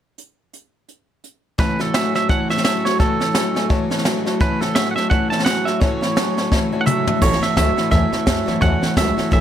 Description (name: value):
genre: rockabilly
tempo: 171 BPM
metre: 4/4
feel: swing 59% on 8ths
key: A major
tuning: A4 = 440 Hz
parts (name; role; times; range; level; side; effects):
- jazz brush drum kit; drums; 0.2-9.4 s; crash cymbal, hi-hat, kick drum, snare drum, toms; -20 LUFS; equal; none
- twangy electric guitar; melody; 1.6-9.4 s; A4 to A5; -22 LUFS; right 4 dB; tape echo
- picked steel-string acoustic guitar; accompaniment; 1.6-9.4 s; A2 to F#4; -29 LUFS; left 4 dB; none
- warm upright piano; accompaniment; 1.6-9.4 s; C#5 to B5; -29 LUFS; left 4 dB; none
- electric guitar through a small old amp; riff; 1.6-9.4 s; A2 to F#3; -22 LUFS; equal; none
- upright bass; bass; 7.2-9.4 s; A1 to F#2; -21 LUFS; equal; none
room: light reverb, small room reverb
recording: none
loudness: -16 LUFS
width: side -10 dB against mid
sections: 0.2-1.6 A section; 1.6-7.2 B section; 7.2-9.4 C section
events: drum fill 6.5-7.2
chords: 0.2 N.C.; 1.6 A6